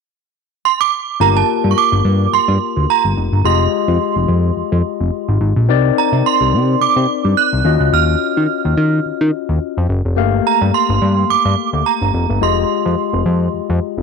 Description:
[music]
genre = early-eighties boogie funk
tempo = 107 BPM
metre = 4/4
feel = swing 56% on 16ths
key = G phrygian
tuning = A4 = 440 Hz
[part]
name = synth chime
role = melody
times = 0.7-13.5 s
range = A5 to F#6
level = -17 LUFS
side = right 13 dB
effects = ensemble chorus, tremolo, slapback echo
[part]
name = overdriven tine electric piano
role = accompaniment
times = 1.2-14.0 s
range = Ab3 to F5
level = -19 LUFS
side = left 16 dB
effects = none
[part]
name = fat analog bass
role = bass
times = 1.2-14.0 s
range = F1 to Eb3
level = -15 LUFS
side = equal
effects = tube saturation
[sound]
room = digital ambience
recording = 1960s-style stereo with parts hard left and right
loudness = -13 LUFS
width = side -5 dB against mid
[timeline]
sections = 0.0-1.2 A section; 1.2-14.0 B section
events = none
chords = 0.0 N.C.; 1.2 Gm7; 3.4 Fm9; 5.7 Cm9; 7.7 Ebm9; 10.2 Gm9; 12.4 Fm9

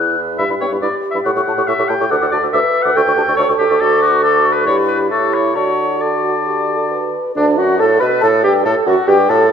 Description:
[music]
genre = quick classical-period movement for wind quintet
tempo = 140 BPM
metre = 4/4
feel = straight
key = D major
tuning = A4 = 444 Hz
[part]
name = mellow hollow concert flute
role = melody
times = 0.0-9.5 s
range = D5 to F#6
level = -20 LUFS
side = left 7 dB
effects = none
[part]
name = warm French horn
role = accompaniment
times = 0.0-9.5 s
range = D4 to B4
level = -18 LUFS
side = right 2 dB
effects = none
[part]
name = warm clarinet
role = accompaniment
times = 0.0-9.5 s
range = B3 to B4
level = -23 LUFS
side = right 8 dB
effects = none
[part]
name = warm bassoon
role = bass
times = 0.0-9.5 s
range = D2 to D3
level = -19 LUFS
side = right 2 dB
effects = none
[part]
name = warm oboe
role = second line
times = 0.4-9.5 s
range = D4 to G5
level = -18 LUFS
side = left 2 dB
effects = none
[sound]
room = moderate concert hall reverb, RT60 1.9 s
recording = none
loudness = -12 LUFS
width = side -7 dB against mid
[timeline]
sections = 0.0-7.4 A section; 7.4-9.5 B section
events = none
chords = 0.4 Em/G; 1.3 A7; 2.1 D; 3.0 A7/D; 3.8 D; 4.7 Em/G; 5.1 A7; 5.6 D

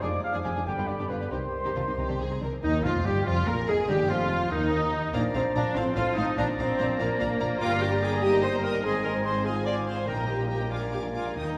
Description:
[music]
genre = quick classical-period movement for symphony orchestra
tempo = 96 BPM (dotted quarters)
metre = 6/8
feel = rubato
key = Eb major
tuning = A4 = 441 Hz
[part]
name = warm studio violin section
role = melody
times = 0.0-11.6 s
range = Eb4 to Eb6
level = -41 LUFS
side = equal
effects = none
[part]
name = bright clarinet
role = second line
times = 0.0-11.6 s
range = Eb4 to F5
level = -38 LUFS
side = equal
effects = none
[part]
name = flute section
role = second line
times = 0.0-11.6 s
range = Bb4 to D6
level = -39 LUFS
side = equal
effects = none
[part]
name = warm studio violin section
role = second line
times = 0.0-11.6 s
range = C4 to Bb5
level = -40 LUFS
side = equal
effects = none
[part]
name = dark bassoon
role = accompaniment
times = 0.0-11.6 s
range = D3 to C4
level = -38 LUFS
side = equal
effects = none
[part]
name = warm studio viola section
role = accompaniment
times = 0.0-11.6 s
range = Ab3 to D5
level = -32 LUFS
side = equal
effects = none
[part]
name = mellow French horn section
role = sustained chords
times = 0.0-11.6 s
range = Eb3 to F4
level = -38 LUFS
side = equal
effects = none
[part]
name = warm trumpet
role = stabs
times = 0.0-2.4 s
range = B4 to Ab5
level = -35 LUFS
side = equal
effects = none
[part]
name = dark studio cello section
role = bass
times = 0.0-11.6 s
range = Eb2 to Eb3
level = -36 LUFS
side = equal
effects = none
[part]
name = warm studio double bass section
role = bass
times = 0.0-11.6 s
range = F1 to Eb2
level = -36 LUFS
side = equal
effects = none
[part]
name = warm oboe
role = second line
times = 2.6-11.6 s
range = Eb4 to Bb5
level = -40 LUFS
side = equal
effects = none
[part]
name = timpani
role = percussion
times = 3.9-4.5, 10.1-10.7 s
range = Bb2 to Eb3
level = -40 LUFS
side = equal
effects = none
[sound]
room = wet recital hall reverb, RT60 1.7 s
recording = recorded in a church or concert hall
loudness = -27 LUFS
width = mono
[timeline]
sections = 0.0-2.6 A section; 2.6-11.6 B section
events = none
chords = 0.0 Ddim/F; 0.7 G; 1.3 Cm; 2.6 Eb; 3.3 Bb5/F; 3.9 Eb; 5.1 Bb; 5.8 F; 6.4 Bb; 7.6 Gm; 8.2 Eb/G; 8.8 Ab; 9.5 Fm/Ab; 10.1 Eb/Bb; 10.7 Bb7

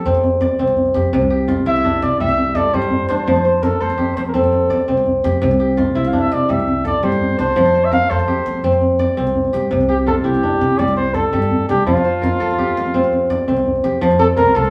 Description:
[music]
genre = west african traditional, West African string and xylophone music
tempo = 112 BPM (dotted quarters)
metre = 12/8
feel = straight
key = F major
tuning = A4 = 443 Hz
[part]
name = breathy flugelhorn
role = melody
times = 0.0-14.7 s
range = F4 to F5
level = -21 LUFS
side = equal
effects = none
[part]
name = kora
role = arpeggios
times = 0.0-14.7 s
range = C3 to D5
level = -20 LUFS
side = equal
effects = none
[part]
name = upright bass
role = bass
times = 0.1-14.7 s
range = C2 to F3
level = -25 LUFS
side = equal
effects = none
[part]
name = djembe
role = percussion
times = 0.1-14.7 s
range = none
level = -24 LUFS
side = equal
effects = none
[sound]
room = wet studio ambience, RT60 0.5 s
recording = band playing live in one room, studio reverb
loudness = -17 LUFS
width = mono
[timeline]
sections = 0.0-14.0 A section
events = none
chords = 0.0 F; 1.1 C; 3.3 F; 5.4 C; 7.6 F; 9.7 C; 11.9 F

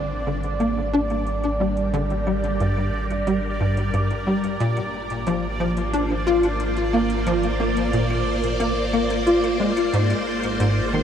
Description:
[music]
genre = ambient, sequencer-driven space music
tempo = 90 BPM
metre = 4/4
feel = straight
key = unclear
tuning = A4 = 439 Hz
[part]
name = phased string machine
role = sustained chords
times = 0.0-11.0 s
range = G3 to D5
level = -27 LUFS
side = equal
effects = ensemble chorus, phaser
[part]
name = tight sequencer bass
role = riff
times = 0.0-11.0 s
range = G2 to F4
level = -22 LUFS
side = left 1 dB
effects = ensemble chorus, ping-pong delay
[part]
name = warm sub bass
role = bass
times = 0.0-11.0 s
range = Ab1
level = -29 LUFS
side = equal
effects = tube saturation
[part]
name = bubbling stepped-filter texture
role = texture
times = 0.0-11.0 s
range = D5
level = -29 LUFS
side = right 2 dB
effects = chorus, built-in reverb
[part]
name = electronic claves and hi-hat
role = percussion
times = 0.3-11.0 s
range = none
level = -45 LUFS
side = equal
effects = overdrive, ping-pong delay
[sound]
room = wet huge ambient reverb, RT60 7.8 s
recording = dreamy mix soaked in reverb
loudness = -20 LUFS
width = side -8 dB against mid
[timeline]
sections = 0.0-11.0 A section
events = fade-in on string machine 0.0-11.0; fade-in on drum 0.0-11.0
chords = 0.0 Gm/Ab; 4.6 Bb7/Ab; 9.9 Abadd9

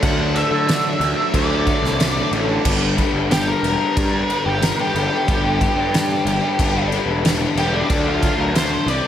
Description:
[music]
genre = quiet-loud alternative rock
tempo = 92 BPM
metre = 4/4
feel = straight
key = G major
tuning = A4 = 440 Hz
[part]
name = octave-fuzz lead guitar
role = melody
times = 0.0-9.1 s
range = D4 to F#5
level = -23 LUFS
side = right 1 dB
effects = distortion, analog delay
[part]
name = fuzz guitar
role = riff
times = 0.0-2.6 s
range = D3 to D4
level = -26 LUFS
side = right 10 dB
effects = distortion, slapback echo
[part]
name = overdriven semi-hollow guitar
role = riff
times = 0.0-9.1 s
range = G2 to D4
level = -22 LUFS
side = left 5 dB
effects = none
[part]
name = fuzz picked electric bass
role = bass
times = 0.0-9.0 s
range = E1 to D3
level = -23 LUFS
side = equal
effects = overdrive
[part]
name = loose indie drum kit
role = drums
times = 0.0-9.0 s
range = crash cymbal, kick drum, snare drum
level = -21 LUFS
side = equal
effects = none
[sound]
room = moderate lush hall reverb, RT60 2.4 s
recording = big arena sound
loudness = -16 LUFS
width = side -10 dB against mid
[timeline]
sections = 0.0-2.7 A section; 2.7-9.1 B section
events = lead electric guitar solo 2.7-9.1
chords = 0.0 D; 2.7 G; 7.9 D

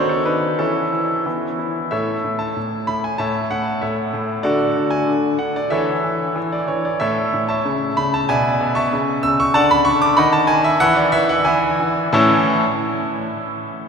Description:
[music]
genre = classical-period piano sonatina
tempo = 87-97 BPM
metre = 2/4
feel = straight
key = A major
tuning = A4 = 441 Hz
[part]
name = bright grand piano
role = solo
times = 0.0-12.6 s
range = A2 to E6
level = -16 LUFS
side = equal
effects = none
[sound]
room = wet cathedral reverb, RT60 5.9 s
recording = recorded in a church or concert hall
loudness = -16 LUFS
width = side -6 dB against mid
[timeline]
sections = 0.0-1.9 A section; 1.9-12.1 B section; 12.1-13.5 C section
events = none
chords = 0.0 D#dim7; 0.6 A/E; 1.3 E5; 1.9 A; 4.4 D; 5.7 A/E; 6.4 N.C.; 7.0 A; 7.7 A/C#; 8.3 E7/B; 8.9 A/C#; 9.6 Dmaj7; 10.2 D#dim; 10.8 N.C.; 11.5 E7; 12.1 A

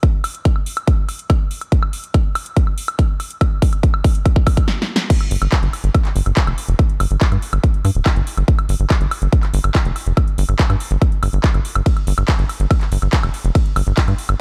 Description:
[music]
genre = psychedelic trance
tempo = 142 BPM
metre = 4/4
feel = straight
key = unclear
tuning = A4 = 440 Hz
[part]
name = big-room dance drum kit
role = drums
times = 0.0-14.4 s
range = crash cymbal, handclaps, hi-hat, ride cymbal, snare drum, woodblock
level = -26 LUFS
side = equal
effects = studio reverb
[part]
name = electronic kick drum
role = drums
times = 0.0-14.1 s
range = none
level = -17 LUFS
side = equal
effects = studio reverb
[part]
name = tight sequencer bass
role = bass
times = 5.3-14.4 s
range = D1 to G2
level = -19 LUFS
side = equal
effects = none
[sound]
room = digital ambience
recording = dark, warm production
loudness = -17 LUFS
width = mono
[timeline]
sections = 0.0-5.1 A section; 5.1-14.4 B section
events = build-up 0.0-5.1; drum fill 1.7-4.7, 4.7-5.1; stop 4.7-5.1; drop 5.1-14.4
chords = none

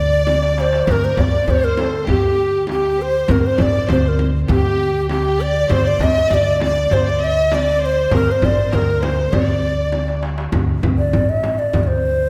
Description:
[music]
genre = Arabic maqam ensemble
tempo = 99 BPM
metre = 4/4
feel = straight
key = D maqam bayati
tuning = A4 = 440 Hz
[part]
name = breathy reedy ney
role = melody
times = 0.0-12.3 s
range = G4 to E5-43c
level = -20 LUFS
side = equal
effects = none
[part]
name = warm studio violin section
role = second line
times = 0.0-10.2 s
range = G4 to E5-50c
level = -28 LUFS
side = equal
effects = none
[part]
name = upright bass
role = bass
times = 0.0-12.3 s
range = A1 to D2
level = -23 LUFS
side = equal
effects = none
[part]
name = darbuka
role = percussion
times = 0.1-12.3 s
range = none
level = -25 LUFS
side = equal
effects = none
[part]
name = frame drum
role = percussion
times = 0.3-11.9 s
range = none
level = -25 LUFS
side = equal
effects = none
[sound]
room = wet scoring stage reverb, RT60 1.6 s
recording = none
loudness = -17 LUFS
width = mono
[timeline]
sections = 0.0-10.5 A section; 10.5-12.3 B section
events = drum fill 0.3-0.9, 9.9-10.5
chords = none

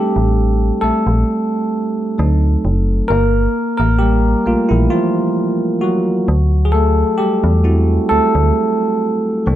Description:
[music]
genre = R&B, neo-soul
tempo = 66 BPM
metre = 4/4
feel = swing 53% on 16ths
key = unclear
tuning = A4 = 440 Hz
[part]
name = bell-like tine electric piano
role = accompaniment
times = 0.0-9.6 s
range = E3 to Bb4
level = -15 LUFS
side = equal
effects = wide subtle chorus
[part]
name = metallic FM bass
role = bass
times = 0.2-9.6 s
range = F#1 to E2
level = -14 LUFS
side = equal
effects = none
[sound]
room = light reverb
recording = none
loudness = -13 LUFS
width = side -12 dB against mid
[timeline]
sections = 0.0-9.6 A section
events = tine electric piano solo 0.0-9.6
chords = 0.0 Bbmaj9; 2.2 D7b9; 3.1 Gm9; 6.3 D7

